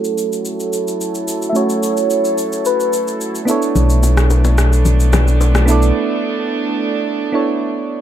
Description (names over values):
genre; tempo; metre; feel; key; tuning
amapiano; 109 BPM; 4/4; straight; B minor; A4 = 440 Hz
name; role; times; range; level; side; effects
soft struck synth lead; melody; 0.0-3.5 s; A4 to E5; -19 LUFS; equal; chorus, phaser, low-pass filter
soft electric-piano-like synth keys; accompaniment; 0.0-8.0 s; A3 to D5; -20 LUFS; right 3 dB; chorus, low-pass filter
warm studio string section; sustained chords; 0.0-8.0 s; F#3 to A4; -22 LUFS; right 3 dB; low-pass filter
electronic shaker and rim click; drums; 0.0-5.9 s; none; -24 LUFS; left 1 dB; none
sub bass with octave; bass; 3.8-5.9 s; B1; -12 LUFS; left 1 dB; none
congas and bongos; percussion; 3.8-5.7 s; none; -22 LUFS; left 4 dB; none
room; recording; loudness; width
light reverb, digital ambience; dark, warm production; -14 LUFS; side -10 dB against mid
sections
0.0-8.0 A section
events
filter sweep 0.0-8.0; break 6.0-8.0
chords
0.0 F#m7; 3.5 Bm11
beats
0.45 1.00 | 1.55 2.10 2.65 3.21 | 3.76 4.31 4.86 5.41 | 5.96 6.51 7.06 7.61